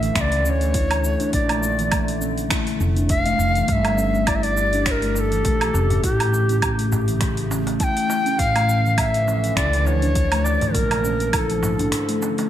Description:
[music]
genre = organic downtempo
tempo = 102 BPM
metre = 4/4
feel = swing 56% on 16ths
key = unclear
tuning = A4 = 438 Hz
[part]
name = bright reedy Native American-style cedar flute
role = melody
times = 0.0-12.2 s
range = G4 to A5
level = -23 LUFS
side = left 1 dB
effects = digital delay
[part]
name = warbly tape-like pad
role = sustained chords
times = 0.0-12.5 s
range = C#3 to G4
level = -29 LUFS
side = left 1 dB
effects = chorus, built-in reverb, phaser, sidechain pumping
[part]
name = steel tongue drum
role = arpeggios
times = 0.0-12.5 s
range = E3 to E4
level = -26 LUFS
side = equal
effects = digital delay
[part]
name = upright bass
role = bass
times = 0.0-11.9 s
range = F1 to D2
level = -23 LUFS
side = equal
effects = sidechain pumping
[part]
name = deep house drum kit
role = drums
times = 0.0-12.5 s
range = finger snaps, hi-hat, shaker, woodblock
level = -27 LUFS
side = right 2 dB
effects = overdrive, gated reverb
[part]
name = electronic kick drum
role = drums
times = 0.2-11.5 s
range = none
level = -24 LUFS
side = equal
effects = overdrive
[part]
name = darbuka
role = percussion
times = 3.8-12.5 s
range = none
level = -31 LUFS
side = right 2 dB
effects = none
[sound]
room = moderate plate reverb, RT60 2.4 s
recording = bright 1980s-style digital production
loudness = -18 LUFS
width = side -11 dB against mid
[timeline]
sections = 0.0-12.5 A section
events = none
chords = 0.0 Dsus2/A; 1.3 Bbmaj7; 3.7 Gsus2; 6.0 A7; 8.4 Dmadd9/A; 10.7 Bbmaj7

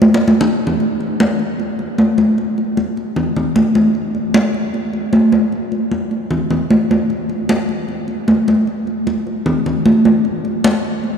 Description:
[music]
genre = latin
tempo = 153 BPM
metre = 4/4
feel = straight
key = none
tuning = none
[part]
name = congas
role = percussion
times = 0.0-11.2 s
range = none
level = -14 LUFS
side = equal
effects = none
[sound]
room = wet cathedral reverb, RT60 5.7 s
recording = recorded in a church or concert hall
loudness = -14 LUFS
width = side -7 dB against mid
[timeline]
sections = 0.8-11.2 A section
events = drum fill 0.0-0.8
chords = none

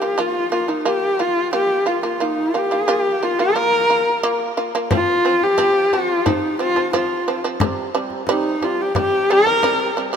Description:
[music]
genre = mongolian traditional, Mongolian folk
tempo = 89 BPM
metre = 4/4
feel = straight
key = Bb zhi mode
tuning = A4 = 440 Hz
[part]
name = rich horsehead fiddle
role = melody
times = 0.0-10.0 s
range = Eb4 to Bb4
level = -18 LUFS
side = left 1 dB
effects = none
[part]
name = shamisen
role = arpeggios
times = 0.0-10.2 s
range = C3 to F4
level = -22 LUFS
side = right 3 dB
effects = none
[part]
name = frame drum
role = percussion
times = 4.9-9.8 s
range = none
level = -23 LUFS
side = left 4 dB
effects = none
[sound]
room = moderate huge ambient reverb, RT60 4.3 s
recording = minimal, uncompressed stereo recording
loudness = -16 LUFS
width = side -7 dB against mid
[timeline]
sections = 0.0-4.9 A section; 4.9-10.2 B section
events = none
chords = 0.0 Bb5; 4.9 F5; 7.6 C5

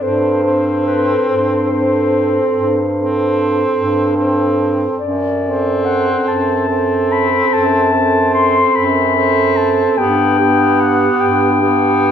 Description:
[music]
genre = classical, lyrical piece for single-reed quartet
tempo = 48 BPM (dotted quarters)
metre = 12/8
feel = rubato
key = unclear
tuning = A4 = 440 Hz
[part]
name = mellow clarinet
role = melody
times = 0.0-12.1 s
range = B4 to C6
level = -17 LUFS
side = left 6 dB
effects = none
[part]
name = mellow alto saxophone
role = second line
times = 0.0-12.1 s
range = G4 to A4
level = -18 LUFS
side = right 6 dB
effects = none
[part]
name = clear tenor saxophone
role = accompaniment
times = 0.0-12.1 s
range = B3 to C4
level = -19 LUFS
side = left 1 dB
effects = none
[part]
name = clear bass clarinet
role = bass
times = 0.0-12.1 s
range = F#2 to G2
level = -18 LUFS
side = right 1 dB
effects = none
[sound]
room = wet recital hall reverb, RT60 1.6 s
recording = dark, warm production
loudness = -12 LUFS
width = side -8 dB against mid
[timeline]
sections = 0.0-12.1 A section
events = none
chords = 0.0 Am7/G; 5.0 D7/F# (rootless); 10.0 G

